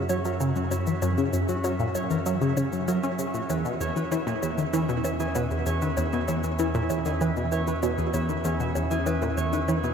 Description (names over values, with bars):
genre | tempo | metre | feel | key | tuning
ambient, sequencer-driven space music | 97 BPM | 4/4 | straight | E lydian | A4 = 435 Hz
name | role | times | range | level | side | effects
concert harp | arpeggios | 0.0-9.9 s | C#4 to C#5 | -33 LUFS | equal | auto-pan, tape echo
tight sequenced synth | riff | 0.0-9.9 s | E2 to C#4 | -26 LUFS | equal | chorus, phaser, tape echo
analog drone | bass | 0.0-9.9 s | E2 to F#2 | -32 LUFS | equal | chorus
bubbling stepped-filter texture | texture | 0.0-9.9 s | E5 | -36 LUFS | right 5 dB | chorus, built-in reverb
bongos and cabasa | percussion | 0.1-9.9 s | none | -36 LUFS | left 3 dB | tape echo
room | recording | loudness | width
wet shimmer reverb, RT60 8.0 s | none | -24 LUFS | side -7 dB against mid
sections
0.0-9.9 A section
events
fade-in on harp 0.0-9.9; fade-in on synth texture 0.0-9.9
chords
0.0 F#7; 3.5 E6